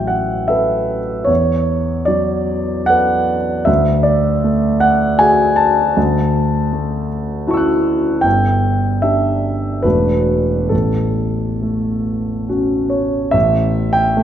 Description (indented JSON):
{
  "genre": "classical, impressionist solo piano",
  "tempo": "66-80 BPM",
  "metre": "3/4",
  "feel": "rubato",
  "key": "A mixolydian",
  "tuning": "A4 = 441 Hz",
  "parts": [
    { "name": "clear concert grand piano", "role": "solo", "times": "0.0-14.2 s", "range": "E1 to F#6", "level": "-14 LUFS", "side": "equal", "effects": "none" }
  ],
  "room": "moderate concert hall reverb, RT60 2.2 s",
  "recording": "minimal, uncompressed stereo recording",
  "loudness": "-14 LUFS",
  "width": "side -10 dB against mid",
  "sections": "0.0-13.3 A section",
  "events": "none",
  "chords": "0.0 Asus2; 1.3 E11; 3.7 D; 6.0 A6/D; 8.2 G5; 9.8 E9sus4; 10.7 A6; 13.3 A5"
}